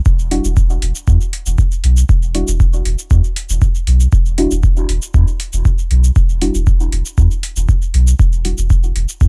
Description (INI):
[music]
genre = dub techno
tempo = 118 BPM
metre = 4/4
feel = straight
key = E minor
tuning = A4 = 440 Hz
[part]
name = soft dub sub bass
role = bass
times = 0.1-9.3 s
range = E1 to E2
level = -17 LUFS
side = equal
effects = transformer saturation, sidechain pumping
[part]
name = electronic kick drum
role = drums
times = 0.1-9.3 s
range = none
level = -16 LUFS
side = equal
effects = overdrive
[part]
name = electronic shaker and hi-hat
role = drums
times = 0.1-9.3 s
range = none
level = -29 LUFS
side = equal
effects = overdrive
[part]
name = deep mellow chord stab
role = stabs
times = 0.3-8.6 s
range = G3 to F#4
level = -24 LUFS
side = equal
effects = chorus, phaser, sidechain pumping, dub echo
[sound]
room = little or no reverb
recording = dry, gritty hardware recording, cassette tape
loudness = -14 LUFS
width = mono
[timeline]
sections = 0.0-9.3 A section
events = filter sweep on synth stab 0.0-9.3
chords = 0.0 Em9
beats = | 0.06 0.57 1.08 1.58 | 2.09 2.60 3.11 3.62 | 4.13 4.63 5.14 5.65 | 6.16 6.67 7.18 7.69 | 8.20 8.70 9.21